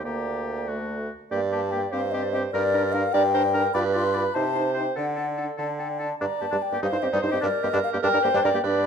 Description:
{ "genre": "quick classical-period movement for wind quintet", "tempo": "98 BPM (dotted quarters)", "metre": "6/8", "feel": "straight", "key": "G minor", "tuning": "A4 = 440 Hz", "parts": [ { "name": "mellow hollow concert flute", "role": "melody", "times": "0.0-8.9 s", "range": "D5 to C6", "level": "-27 LUFS", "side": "left 9 dB", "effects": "none" }, { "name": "clear oboe", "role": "second line", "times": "0.0-8.9 s", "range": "D4 to D5", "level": "-33 LUFS", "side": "left 3 dB", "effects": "none" }, { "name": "warm French horn", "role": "accompaniment", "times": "0.0-8.9 s", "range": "G3 to F4", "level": "-31 LUFS", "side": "equal", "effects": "none" }, { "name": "warm clarinet", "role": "accompaniment", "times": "0.0-8.9 s", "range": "A4 to D5", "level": "-28 LUFS", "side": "right 9 dB", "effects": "none" }, { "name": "clear bassoon", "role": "bass", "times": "0.0-8.9 s", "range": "D2 to D3", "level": "-27 LUFS", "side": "right 3 dB", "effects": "none" } ], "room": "moderate recital hall reverb, RT60 1.4 s", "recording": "dark, warm production", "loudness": "-22 LUFS", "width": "side -7 dB against mid", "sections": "0.0-1.3 A section; 1.3-8.9 B section", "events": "none", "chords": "0.0 Gm/D; 0.7 D; 1.3 Gm; 1.9 C5/G; 2.5 Gm; 3.8 G7; 4.4 Cm; 5.0 D; 6.2 Gm; 6.8 Cm/G; 7.4 Gm", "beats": "| 0.05 0.69 | 1.32 1.93 | 2.54 3.14 | 3.75 4.36 | 4.97 5.59 | 6.21 6.83 | 7.43 8.04 | 8.64" }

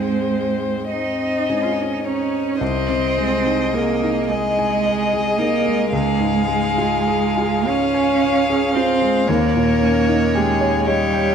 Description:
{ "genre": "classical, slow romantic movement for piano quartet", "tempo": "33-38 BPM (dotted quarters)", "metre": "6/8", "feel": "rubato", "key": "Ab major", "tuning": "A4 = 442 Hz", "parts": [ { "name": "dark violin", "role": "melody", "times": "0.0-11.3 s", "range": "G4 to Eb5", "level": "-23 LUFS", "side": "left 7 dB", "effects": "none" }, { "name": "rich cello", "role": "second line", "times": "0.0-11.3 s", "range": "G3 to F4", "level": "-21 LUFS", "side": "right 8 dB", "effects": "none" }, { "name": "rich violin", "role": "second line", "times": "0.0-11.3 s", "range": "C4 to F5", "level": "-24 LUFS", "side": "left 1 dB", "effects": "none" }, { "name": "warm concert grand piano", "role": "accompaniment", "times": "0.0-11.3 s", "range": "C2 to Ab5", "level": "-22 LUFS", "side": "left 1 dB", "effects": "none" } ], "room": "wet recital hall reverb, RT60 1.6 s", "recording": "none", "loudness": "-16 LUFS", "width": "side -7 dB against mid", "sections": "0.0-2.6 A section; 2.6-11.3 B section", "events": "none", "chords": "0.0 Ab; 2.6 Ab/C; 5.9 Db; 9.3 Eb7", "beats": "0.92 | 2.61 4.30 | 5.92 7.66 | 9.28 10.87" }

